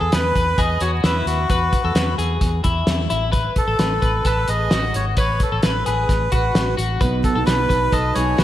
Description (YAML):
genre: jangly indie pop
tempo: 131 BPM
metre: 4/4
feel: straight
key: unclear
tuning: A4 = 440 Hz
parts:
  - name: melodica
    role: melody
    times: 0.0-8.4 s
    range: F#4 to D#5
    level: -22 LUFS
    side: right 1 dB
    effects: slapback echo, analog delay
  - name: twelve-string electric guitar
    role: arpeggios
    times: 0.0-8.4 s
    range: E4 to B4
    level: -24 LUFS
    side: left 4 dB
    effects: wide subtle chorus, slapback echo
  - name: vintage muted fingered electric bass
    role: bass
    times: 0.0-8.4 s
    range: G#1 to E2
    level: -23 LUFS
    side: equal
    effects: none
  - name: cloth-damped thuddy drum kit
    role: drums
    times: 0.1-8.4 s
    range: hi-hat, kick drum, snare drum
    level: -21 LUFS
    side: equal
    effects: none
  - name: fingerpicked steel-string acoustic guitar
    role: accompaniment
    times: 7.0-8.4 s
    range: B2 to F#4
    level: -23 LUFS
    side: right 4 dB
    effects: none
room: moderate lush hall reverb, RT60 1.9 s, small room ambience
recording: big arena sound, vinyl crackle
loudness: -17 LUFS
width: side -12 dB against mid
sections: 0.0-8.4 A section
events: none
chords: 0.0 E; 3.1 Asus2; 7.0 B